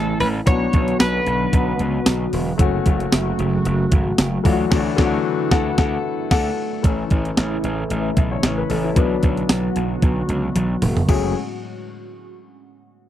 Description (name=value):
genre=1980s-style pop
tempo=113 BPM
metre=4/4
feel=swing 55% on 16ths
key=F# minor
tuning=A4 = 435 Hz
part: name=twelve-string electric guitar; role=melody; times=0.0-2.3 s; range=A4 to C#5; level=-23 LUFS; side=equal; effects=slapback echo
part: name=clear baby grand piano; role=accompaniment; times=0.0-11.3 s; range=E3 to F#5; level=-24 LUFS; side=left 8 dB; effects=none
part: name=phased analog pad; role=sustained chords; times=0.0-11.3 s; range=A2 to F#4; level=-25 LUFS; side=right 1 dB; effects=phaser, chorus
part: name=gritty slap bass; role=bass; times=0.0-11.3 s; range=E1 to D2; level=-23 LUFS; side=equal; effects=overdrive
part: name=clean 12-bit digital drum machine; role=drums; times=0.2-11.2 s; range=crash cymbal, hi-hat, kick drum, snare drum, tambourine, toms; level=-18 LUFS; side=right 1 dB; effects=none
room=little or no reverb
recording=dry, close 1970s-style studio recording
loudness=-17 LUFS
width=side -11 dB against mid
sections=0.0-6.8 A section; 6.8-11.1 B section; 11.1-13.1 C section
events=band accent 4.7-6.8; drum fill 10.6-11.1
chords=0.5 Bm; 2.6 F#m; 4.5 Dadd9; 6.8 A; 9.0 Bm; 11.1 F#madd9